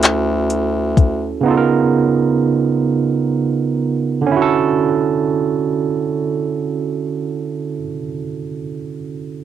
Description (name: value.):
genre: slow six-eight R&B.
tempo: 42 BPM (dotted quarters).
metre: 6/8.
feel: straight.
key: D major.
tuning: A4 = 439 Hz.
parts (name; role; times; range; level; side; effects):
barky tine electric piano; accompaniment; 0.0-9.4 s; C#3 to A#4; -16 LUFS; right 6 dB; overdrive, auto-pan, cassette tape.
clear bass clarinet; bass; 0.0-1.4 s; D2; -19 LUFS; left 3 dB; none.
smooth R&B drum kit; drums; 0.0-1.2 s; handclaps, hi-hat, kick drum; -12 LUFS; left 3 dB; overdrive, cassette tape.
room: moderate booth ambience, RT60 0.2 s.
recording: home recording on cassette.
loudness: -15 LUFS.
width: side -10 dB against mid.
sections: 0.0-4.3 A section; 4.3-7.2 B section.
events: none.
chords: 0.0 Dmaj9; 1.4 C#13; 4.3 Dmaj9.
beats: 0.02 | 1.45 2.88 | 4.30 5.73.